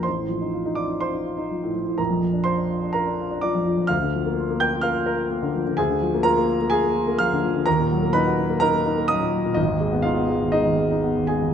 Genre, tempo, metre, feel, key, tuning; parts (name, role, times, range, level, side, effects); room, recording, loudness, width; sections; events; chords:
classical, virtuoso piano study; 126 BPM; 4/4; rubato; Bb major; A4 = 440 Hz
warm grand piano; solo; 0.0-11.5 s; Ab1 to G6; -20 LUFS; equal
light reverb; close, detailed microphones; -20 LUFS; side -8 dB against mid
0.0-11.5 A section
0.1 F7/A; 2.0 Bb; 3.9 Bb/D; 5.8 Bb7/D; 7.7 Ebm; 9.6 Abm